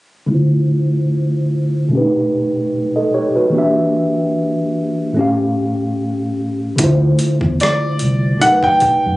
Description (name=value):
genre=R&B, neo-soul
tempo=74 BPM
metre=4/4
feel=swing 54% on 16ths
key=D dorian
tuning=A4 = 439 Hz
part: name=tine electric piano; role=accompaniment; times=0.3-9.2 s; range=A2 to F5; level=-15 LUFS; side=equal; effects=overdrive, fast stereo tremolo, low-pass filter
part: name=vintage muted fingered electric bass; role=bass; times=6.8-9.2 s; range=B1 to F#2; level=-17 LUFS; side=equal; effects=none
part: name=boom bap sampler-style drum kit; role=drums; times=6.8-9.0 s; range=hi-hat, kick drum, rim click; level=-22 LUFS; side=equal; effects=overdrive
part: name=clear grand piano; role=melody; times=7.6-9.2 s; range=D5 to G5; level=-14 LUFS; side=equal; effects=none
room=light reverb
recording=recorded on a phone in the room, studio reverb, compression, nothing above 10.3 kHz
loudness=-14 LUFS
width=side -18 dB against mid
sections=0.3-6.8 A section; 6.8-9.2 B section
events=filter sweep on tine electric piano 0.3-6.8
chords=0.3 Dm9; 1.9 B7b13; 3.5 Em7b5; 5.2 A7b13; 6.8 Dm9; 8.4 B7b13